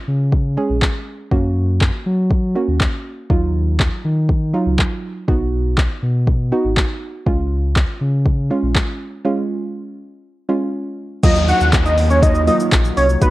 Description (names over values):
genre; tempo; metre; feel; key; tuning
dance-pop; 121 BPM; 4/4; straight; Eb minor; A4 = 439 Hz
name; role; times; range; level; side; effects
soft round pluck; accompaniment; 0.0-13.3 s; Gb3 to Ab4; -22 LUFS; right 2 dB; chorus, sidechain pumping
sub bass with octave; bass; 0.1-13.3 s; Ab1 to Gb3; -18 LUFS; equal; sidechain pumping
smooth R&B drum kit; drums; 0.3-13.3 s; crash cymbal, handclaps, hi-hat, kick drum, shaker; -17 LUFS; equal; overdrive
fat analog lead; melody; 11.2-13.3 s; B4 to Gb5; -17 LUFS; equal; chorus, sidechain pumping
glassy FM pad; sustained chords; 11.8-13.3 s; Eb3 to F4; -25 LUFS; equal; ensemble chorus, built-in reverb, sidechain pumping
downlifter; sound effects; 11.2-13.3 s; none; -26 LUFS; left 1 dB; none
room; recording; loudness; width
light reverb, digital ambience; worn, warbling old tape, cassette tape, warbly pitch drift; -15 LUFS; side -17 dB against mid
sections
0.0-11.2 A section; 11.2-13.3 B section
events
break 9.2-11.2; drop 11.2-13.3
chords
0.0 Db5; 1.3 Gb; 3.3 Ebmadd9; 5.3 B; 7.3 Db; 11.2 Ebmadd9